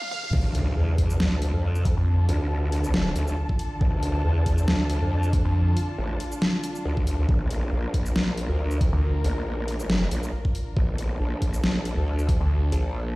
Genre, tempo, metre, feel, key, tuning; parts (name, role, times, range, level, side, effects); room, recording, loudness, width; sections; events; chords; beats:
heavy wobble dubstep; 138 BPM; 4/4; swing 54% on 16ths, half-time; D minor; A4 = 440 Hz
dubstep drum kit; drums; 0.0-12.8 s; crash cymbal, hi-hat, shaker, snare drum, toms; -28 LUFS; equal; overdrive, studio ambience
riser and impact; sound effects; 0.0-2.1 s; -30 LUFS; equal
dark studio string section; sustained chords; 0.3-13.2 s; D3 to A5; -33 LUFS; equal; sidechain pumping, low-pass filter
growl bass; bass; 0.3-13.2 s; A1 to F2; -24 LUFS; equal; chorus, overdrive
electronic kick drum; drums; 0.3-12.4 s; -24 LUFS; equal; overdrive, studio ambience
snarling distorted saw bass; bass; 2.0-2.3, 5.5-5.8, 8.9-9.2, 12.4-12.7 s; D2 to F2; -21 LUFS; equal; distortion, overdrive
light reverb; played on a big sound system in a bare room, stone room reverb, high-pass filter; -22 LUFS; side -20 dB against mid
0.3-13.2 A section
break 0.0-0.3; riser 0.0-0.3; drum fill 0.0-0.3; drop 0.3-13.2; impact 0.3-2.1
0.3 Dm; 7.3 Bb
| 0.33 0.77 1.20 1.64 | 2.07 2.51 2.94 3.38 | 3.81 4.25 4.68 5.11 | 5.55 5.98 6.42 6.85 | 7.29 7.72 8.16 8.59 | 9.03 9.46 9.90 10.33 | 10.77 11.20 11.64 12.07 | 12.51 12.94